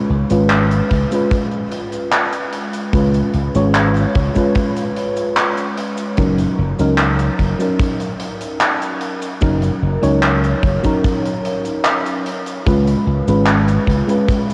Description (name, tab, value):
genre	vaporwave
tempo	74 BPM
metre	4/4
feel	straight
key	F# major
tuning	A4 = 440 Hz
part	mellow FM electric piano	accompaniment	0.0-14.5 s	F#3 to C#5	-20 LUFS	equal	subtle chorus, delay
part	slap bass	bass	0.1-14.0 s	F#1 to C#2	-20 LUFS	equal	none
part	big rock drum kit	drums	0.3-14.5 s	cabasa, handclaps, hi-hat	-24 LUFS	equal	none
part	kick drum	drums	0.9-14.5 s	none	-24 LUFS	equal	none
room	wet huge ambient reverb, RT60 7.5 s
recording	dreamy mix soaked in reverb, cassette tape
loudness	-17 LUFS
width	mono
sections	0.0-14.5 A section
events	none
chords	0.0 C#7; 6.2 F#6; 12.3 C#7